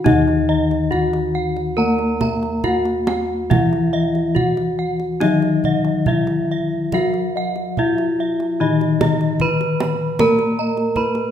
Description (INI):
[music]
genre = Javanese gamelan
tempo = 71 BPM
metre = 4/4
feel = uneven beats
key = Eb pelog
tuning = A4 = 440 Hz
[part]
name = gamelan-type bronze metallophone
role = melody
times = 0.0-11.3 s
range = Eb4 to Cb5-20c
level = -21 LUFS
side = left 1 dB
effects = none
[part]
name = gamelan-type bronze metallophone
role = accompaniment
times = 0.0-11.3 s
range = Eb3 to Bb3-30c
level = -22 LUFS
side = left 3 dB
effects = none
[part]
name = gamelan-type bronze metallophone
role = arpeggios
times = 0.0-11.3 s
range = Eb5 to Cb6-20c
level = -27 LUFS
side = right 5 dB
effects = none
[part]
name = gamelan-type bossed gongs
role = bass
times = 0.0-11.3 s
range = Eb2 to Bb4-30c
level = -24 LUFS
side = right 1 dB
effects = none
[part]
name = gamelan-type bossed gongs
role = arpeggios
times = 0.1-11.3 s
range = Eb5 to Cb6-20c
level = -29 LUFS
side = left 5 dB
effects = none
[part]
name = kendang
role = percussion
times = 0.1-11.2 s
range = none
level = -24 LUFS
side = right 4 dB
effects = none
[sound]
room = moderate recital hall reverb, RT60 1.6 s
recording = minimal, uncompressed stereo recording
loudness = -16 LUFS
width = side -9 dB against mid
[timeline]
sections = 0.0-11.3 A section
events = none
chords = none